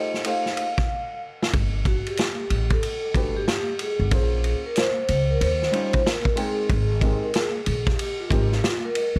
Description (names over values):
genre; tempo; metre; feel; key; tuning
hip hop, jazz-hop; 93 BPM; 4/4; swing 62% on 16ths; unclear; A4 = 444 Hz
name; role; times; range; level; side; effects
vibraphone with soft mallets; melody; 0.0-9.2 s; F4 to F5; -29 LUFS; equal; none
dark concert grand piano; accompaniment; 0.0-8.6 s; G3 to G5; -32 LUFS; equal; none
vintage drum kit; drums; 0.1-9.1 s; hi-hat, kick drum, ride cymbal, snare drum; -28 LUFS; equal; none
upright bass; bass; 1.5-9.2 s; F1 to Eb2; -26 LUFS; equal; none
room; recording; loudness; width
light reverb; none; -24 LUFS; mono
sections
0.0-1.5 A section; 1.5-9.2 B section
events
break 0.0-1.5; drum fill 0.9-1.5; vibraphone solo 1.5-9.2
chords
0.0 F9; 1.5 Gsus2; 4.1 Bbm9; 5.4 Eb13; 6.7 Abmaj9